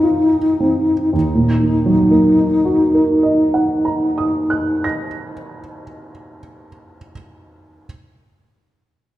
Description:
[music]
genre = classical, impressionist duo for alto flute and grand piano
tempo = 40 BPM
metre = 3/4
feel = rubato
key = Eb dorian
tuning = A4 = 442 Hz
[part]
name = mellow wooden-headed alto flute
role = melody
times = 0.0-4.9 s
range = Eb4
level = -15 LUFS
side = left 1 dB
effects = none
[part]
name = dark baby grand piano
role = accompaniment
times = 0.0-7.9 s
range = Eb2 to Bb6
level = -19 LUFS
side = right 2 dB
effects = none
[sound]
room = wet recital hall reverb, RT60 1.8 s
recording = none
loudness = -13 LUFS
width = side -14 dB against mid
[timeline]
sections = 0.0-1.1 A section; 1.1-5.7 B section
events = slowing down 0.0-1.1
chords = 0.0 Ab69/Eb; 1.1 Ebm

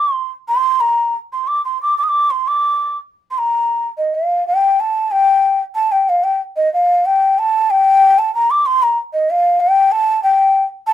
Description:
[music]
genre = indian classical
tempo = 184 BPM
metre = 4/4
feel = straight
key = unclear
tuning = A4 = 441 Hz
[part]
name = mellow hollow bansuri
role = solo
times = 0.0-10.9 s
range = Eb5 to Eb6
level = -13 LUFS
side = left 1 dB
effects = none
[sound]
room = light reverb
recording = minimal, uncompressed stereo recording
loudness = -13 LUFS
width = side -11 dB against mid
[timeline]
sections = 0.0-5.1 A section; 5.1-10.9 B section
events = speeding up 0.0-10.9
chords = none

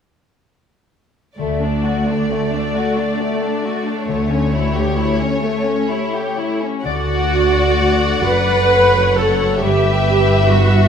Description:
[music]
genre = classical, slow romantic movement for symphony orchestra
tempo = 40-46 BPM (dotted quarters)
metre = 12/8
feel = rubato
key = D major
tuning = A4 = 440 Hz
[part]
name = warm studio violin section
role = melody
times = 1.4-10.9 s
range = C#5 to F#5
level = -24 LUFS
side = left 2 dB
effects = none
[part]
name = warm studio violin section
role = second line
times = 1.4-10.9 s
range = A3 to E5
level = -22 LUFS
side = left 3 dB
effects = none
[part]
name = rich studio viola section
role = accompaniment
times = 1.4-10.9 s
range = A3 to B4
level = -18 LUFS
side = equal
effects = none
[part]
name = concert harp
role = arpeggios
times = 1.4-10.9 s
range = G2 to B4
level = -24 LUFS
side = left 6 dB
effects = none
[part]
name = warm studio cello section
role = bass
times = 1.4-10.9 s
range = D2 to G2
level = -21 LUFS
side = right 2 dB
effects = none
[part]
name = warm studio double bass section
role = bass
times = 1.4-10.9 s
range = F#1 to D2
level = -22 LUFS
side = right 3 dB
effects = none
[sound]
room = wet scoring stage reverb, RT60 1.8 s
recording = none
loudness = -14 LUFS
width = side -7 dB against mid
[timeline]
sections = 1.4-6.8 A section; 6.8-10.9 B section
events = none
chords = 1.4 D; 4.1 A7/D; 6.8 D; 9.6 Em/G

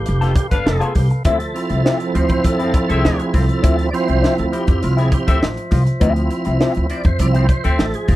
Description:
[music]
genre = funk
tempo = 101 BPM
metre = 4/4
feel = straight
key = D dorian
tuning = A4 = 441 Hz
[part]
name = percussive tonewheel organ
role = sustained chords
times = 0.0-8.2 s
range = F3 to F5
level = -29 LUFS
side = equal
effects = overdrive, stopped rotary speaker
[part]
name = tonewheel organ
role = stabs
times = 0.0-8.2 s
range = F3 to D5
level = -21 LUFS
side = right 3 dB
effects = overdrive, chorus vibrato, slow rotary speaker
[part]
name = upright bass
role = bass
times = 0.0-8.2 s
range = F1 to F2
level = -18 LUFS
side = equal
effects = none
[part]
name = semi-hollow electric guitar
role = accompaniment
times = 0.1-8.2 s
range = F3 to A4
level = -22 LUFS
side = left 4 dB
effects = wah
[part]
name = crisp fusion drum kit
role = drums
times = 0.1-8.2 s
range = hi-hat, kick drum, snare drum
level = -19 LUFS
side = equal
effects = none
[part]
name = mellow horn section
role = second line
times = 0.5-7.8 s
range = C4 to F5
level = -22 LUFS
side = left 5 dB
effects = none
[sound]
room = little or no reverb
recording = none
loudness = -14 LUFS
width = side -16 dB against mid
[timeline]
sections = 0.0-8.2 A section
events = tonewheel organ solo 0.0-8.2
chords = 0.0 G9; 1.3 Dm9

